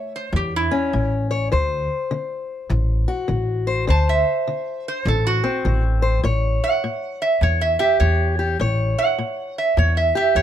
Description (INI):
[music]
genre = acoustic country blues, solo or duo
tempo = 102 BPM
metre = 4/4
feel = swing 63% on 8ths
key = A mixolydian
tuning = A4 = 440 Hz
[part]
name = metal-body resonator slide guitar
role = melody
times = 0.0-10.4 s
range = E4 to A5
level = -21 LUFS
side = right 4 dB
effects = none
[part]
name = fingerpicked steel-string acoustic guitar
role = accompaniment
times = 0.0-10.4 s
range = A2 to C#5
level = -24 LUFS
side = left 4 dB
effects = none
[part]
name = upright bass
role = bass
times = 0.3-10.4 s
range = A1 to E2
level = -20 LUFS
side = equal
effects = none
[sound]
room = little or no reverb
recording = close, detailed microphones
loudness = -18 LUFS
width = side -10 dB against mid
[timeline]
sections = 0.0-10.4 A section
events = resonator guitar played with a steel bar solo 0.0-10.4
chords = 0.0 A; 1.5 D7; 6.2 A7